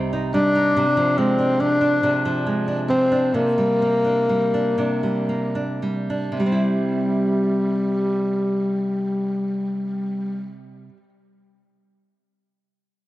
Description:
pop; 35-48 BPM (dotted quarters); 6/8; straight; A4 = 441 Hz
breathy tenor saxophone; melody; 0.0-10.5 s; G3 to D4; -20 LUFS; left 1 dB
nylon-string guitar; accompaniment; 0.0-11.1 s; C3 to E4; -24 LUFS; right 2 dB
vintage muted fingered electric bass; bass; 0.0-0.7 s; Bb1 to C2; -44 LUFS; equal
moderate plate reverb, RT60 3.1 s; dark, warm production; -19 LUFS; side -16 dB against mid
0.0-6.4 A section; 6.4-9.8 B section
slowing down 0.8-6.4
0.0 Cm; 0.8 Ddim/C; 3.3 Gm/C; 6.4 C

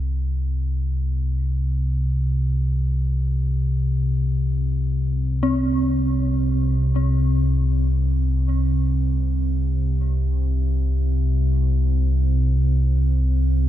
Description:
dark ambient drone; free time; A4 = 440 Hz
dark detuned synth bell; arpeggios; 0.0-13.7 s; C4; -27 LUFS; equal; chorus, tremolo, ping-pong delay
deep rumbling drone; drone; 0.0-13.7 s; C2 to C3; -19 LUFS; equal; built-in reverb
wet cathedral reverb, RT60 5.5 s; dreamy mix soaked in reverb; -19 LUFS; side -12 dB against mid
0.0-13.7 A section

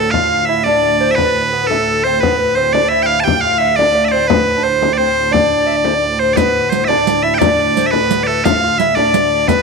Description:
medieval dance; 116 BPM (dotted quarters); 6/8; straight; D dorian; A4 = 441 Hz
loud bright bagpipes; melody; 0.0-9.6 s; A4 to A5; -16 LUFS; right 4 dB
bright reedy tenor recorder; second line; 0.0-9.6 s; A4 to G5; -18 LUFS; left 10 dB
lute; second line; 0.0-9.6 s; A3 to G4; -19 LUFS; right 10 dB
pipe organ, strings celeste; drone; 0.0-9.6 s; D2 to A2; -23 LUFS; right 1 dB
frame drum; percussion; 0.1-9.6 s; -18 LUFS; left 9 dB
riq; percussion; 6.4-9.6 s; -20 LUFS; right 14 dB
wet spring reverb, RT60 1.9 s, small room reverb; 1960s-style stereo with parts hard left and right; -11 LUFS; side -4 dB against mid
0.0-6.4 A section; 6.4-9.6 A section

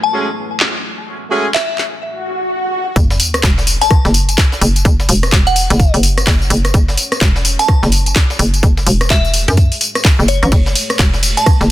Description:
bass house; 127 BPM; 4/4; swing 61% on 16ths; F# minor; A4 = 441 Hz
glassy synth bell; melody; 0.0-11.5 s; C#5 to A5; -19 LUFS; left 1 dB; chorus, phaser, tape echo
dark analog pad; sustained chords; 0.0-11.7 s; A3 to F#5; -37 LUFS; left 1 dB
deep dark ambient pad; texture; 0.0-2.0 s; F#3 to B4; -32 LUFS; left 1 dB; chorus, built-in reverb, sidechain pumping
clear horn section; stabs; 0.1-1.5 s; G#3 to G#4; -20 LUFS; right 1 dB; sidechain pumping, tape echo
garage drum kit; drums; 0.6-11.7 s; handclaps, hi-hat, ride cymbal, rim click, tambourine; -16 LUFS; equal
swell and sub drop; sound effects; 2.1-4.8 s; -21 LUFS; equal
hollow knocking FM bass; bass; 3.0-11.7 s; E1 to F#2; -14 LUFS; equal; sidechain pumping
breakbeat sampler-style drum kit; drums; 3.0-11.7 s; hi-hat, snare drum; -25 LUFS; equal
electronic kick drum; drums; 3.0-11.6 s; -12 LUFS; equal
digital ambience; dense, heavily limited modern master, low-pass filter; -11 LUFS; side -14 dB against mid
0.0-3.0 A section; 3.0-11.7 B section
filter sweep 0.0-3.0; break 2.0-3.0; swell 2.1-3.0; drop 3.0-11.7; impact 3.0-4.8
0.0 F#madd9

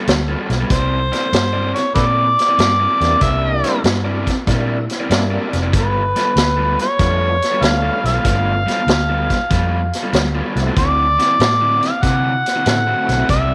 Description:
electric blues shuffle; 95 BPM; 4/4; swing 68% on 8ths; G mixolydian; A4 = 440 Hz
raw garage guitar; riff; 0.0-13.5 s; D3 to D5; -25 LUFS; equal; overdrive
vintage muted fingered electric bass; bass; 0.1-13.5 s; F1 to C3; -22 LUFS; equal
vintage drum kit; drums; 0.1-13.5 s; hi-hat, kick drum, snare drum; -22 LUFS; equal
overdriven harmonica; melody; 0.7-13.5 s; A4 to F#5; -20 LUFS; equal
tonewheel organ; accompaniment; 3.0-13.3 s; G3 to F#4; -29 LUFS; equal; slow rotary speaker, overdrive, chorus vibrato
moderate spring reverb, RT60 2.7 s; -17 LUFS; mono
0.0-13.5 A section
0.0 G9; 0.7 C9; 5.7 G9; 10.8 D9

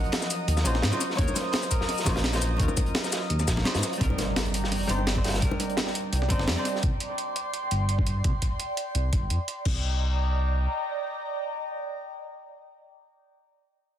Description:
liquid drum and bass; 170 BPM; 4/4; straight; A4 = 435 Hz
bright concert grand piano; melody; 0.0-3.6 s; Bb4 to Gb5; -38 LUFS; left 1 dB; dub echo
hollow-body jazz guitar; accompaniment; 0.0-6.8 s; F3 to C5; -32 LUFS; right 1 dB; dub echo
airy breathy pad; sustained chords; 0.0-13.2 s; D5 to Eb6; -33 LUFS; equal; chorus, phaser, sidechain pumping
crunchy breakbeat drum kit; drums; 0.0-6.8 s; hi-hat, snare drum; -33 LUFS; equal; high-pass filter on hats, small room ambience, high-pass filter on snare, high-pass filter on room
breakbeat sampler-style drum kit; drums; 0.1-9.7 s; crash cymbal, hi-hat, shaker, snare drum; -31 LUFS; equal; small room ambience
smooth gliding synth bass; bass; 0.5-10.7 s; G1 to Ab2; -26 LUFS; equal
bongos; percussion; 0.7-6.5 s; -38 LUFS; left 4 dB
electronic kick drum; drums; 1.2-9.7 s; -27 LUFS; equal; small room ambience
impact; sound effects; 4.0-5.4 s; -33 LUFS; equal
light reverb, small room ambience; dense, heavily limited modern master; -24 LUFS; side -10 dB against mid
0.0-4.0 A section; 4.0-9.7 B section; 9.7-12.5 C section
drop 0.0-4.0; impact 4.0-5.4
0.0 Ebm9; 4.0 Cm9

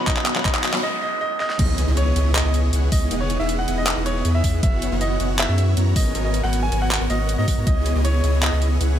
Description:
future bass; 158 BPM; 4/4; half-time; A4 = 442 Hz
clean electric guitar; accompaniment; 0.0-0.8 s; F#3 to B4; -31 LUFS; left 4 dB; wide subtle chorus, sidechain pumping, tape echo
shimmering ambient pad; sustained chords; 0.0-9.0 s; C#3 to B4; -34 LUFS; left 2 dB; chorus, built-in reverb, phaser, sidechain pumping
dense compressed supersaw; riff; 0.0-9.0 s; B3 to B5; -26 LUFS; equal; sidechain pumping
saturated sub bass; bass; 0.0-9.0 s; E1 to G#2; -21 LUFS; equal; sidechain pumping, high-pass filter
bright grand piano; melody; 0.1-8.6 s; C#5 to G#5; -27 LUFS; right 2 dB; sidechain pumping, ping-pong delay
electronic kick drum; drums; 0.1-7.7 s; -21 LUFS; equal; overdrive
pop drum kit; drums; 0.1-8.9 s; crash cymbal, handclaps, hi-hat, snare drum; -25 LUFS; equal; overdrive, high-pass filter on snare, high-pass filter on hats, high-pass filter on cymbals, high-pass filter on room
noise sweep and impact; sound effects; 0.5-3.1 s; -30 LUFS; equal
light reverb; -18 LUFS; side -10 dB against mid
0.0-1.6 A section; 1.6-9.0 B section
build-up 0.0-1.6; drum fill 0.0-0.8, 1.4; noise sweep 0.5-1.6; break 0.8-1.6; drop 1.6-9.0; impact 1.6-3.1
0.0 G#m7; 1.6 C#m9; 3.1 Emaj9; 4.6 F#7sus4; 6.0 G#m11; 7.7 C#m9

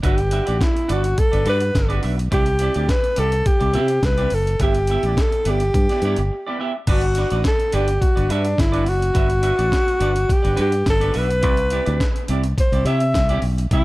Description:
disco; 105 BPM; 4/4; straight; G major; A4 = 443 Hz
clean electric guitar; accompaniment; 0.0-13.8 s; B3 to E5; -27 LUFS; right 4 dB; lush chorus
fingered electric bass; bass; 0.0-13.8 s; F#1 to C3; -21 LUFS; equal
breakbeat sampler-style drum kit; drums; 0.0-13.8 s; crash cymbal, hi-hat, kick drum, snare drum; -21 LUFS; equal
breathy alto saxophone; melody; 0.1-13.8 s; D4 to E5; -21 LUFS; equal
digital ambience; -16 LUFS; side -19 dB against mid
0.0-6.9 A section; 6.9-13.8 A section
break 6.3-6.9
0.0 Gmaj7; 2.3 Cadd9; 4.6 G6; 6.9 Gmaj7; 11.4 Cadd9

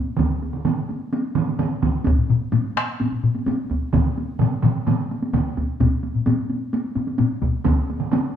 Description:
japanese traditional, taiko drum ensemble; 128 BPM; 4/4; straight
taiko ensemble; percussion; 0.1-8.3 s; -24 LUFS; right 1 dB
solo taiko drums; percussion; 0.2-7.8 s; -23 LUFS; equal
taiko ensemble; percussion; 0.2-8.2 s; -24 LUFS; right 6 dB
taiko ensemble; percussion; 2.1-7.5 s; -22 LUFS; left 4 dB
wet large studio reverb, RT60 1.0 s; band playing live in one room; -19 LUFS; side -9 dB against mid
0.0-8.4 A section

